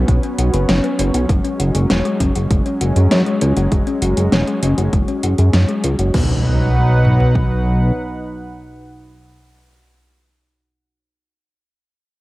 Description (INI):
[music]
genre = synthwave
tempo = 99 BPM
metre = 4/4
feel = straight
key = B major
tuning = A4 = 440 Hz
[part]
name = warm analog pad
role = sustained chords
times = 0.0-9.3 s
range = B2 to F#5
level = -22 LUFS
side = equal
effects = chorus, sidechain pumping, cassette tape
[part]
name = thumb-piano-like synth pluck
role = arpeggios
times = 0.0-6.4 s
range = G#3 to C#5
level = -23 LUFS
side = left 4 dB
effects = chorus, cassette tape, tape echo
[part]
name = chorused synth bass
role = bass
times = 0.0-7.9 s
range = E1 to F#2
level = -16 LUFS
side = equal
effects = sidechain pumping
[part]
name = pop drum kit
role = drums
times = 0.1-7.5 s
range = kick drum, toms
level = -18 LUFS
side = equal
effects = overdrive, cassette tape
[part]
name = pop drum kit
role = drums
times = 0.1-6.3 s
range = crash cymbal, hi-hat, snare drum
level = -22 LUFS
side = equal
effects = overdrive, cassette tape
[part]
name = impact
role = sound effects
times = 6.1-10.1 s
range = none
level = -23 LUFS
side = equal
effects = none
[sound]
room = moderate spring reverb, RT60 2.4 s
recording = home recording on cassette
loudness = -14 LUFS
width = side -18 dB against mid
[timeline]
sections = 0.0-6.1 A section; 6.1-8.6 B section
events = filter sweep on synth arpeggio sound 0.0-6.1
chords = 0.0 Bsus2; 1.3 F#sus2; 6.1 B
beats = 0.08 0.69 | 1.29 1.90 2.51 3.11 | 3.72 4.32 4.93 5.54 | 6.14 6.75 7.36 7.96